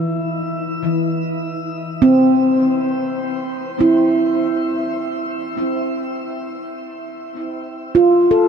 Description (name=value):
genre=ambient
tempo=51 BPM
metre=4/4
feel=straight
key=unclear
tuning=A4 = 439 Hz
part: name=handpan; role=solo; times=0.0-8.5 s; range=E3 to A4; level=-16 LUFS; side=right 1 dB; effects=diffuse ambient delay
room=wet shimmer reverb, RT60 7.7 s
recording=none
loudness=-15 LUFS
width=side -7 dB against mid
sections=0.0-8.5 A section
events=none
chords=0.0 C/E; 3.2 N.C.; 7.9 B7(b5, no3) (rootless)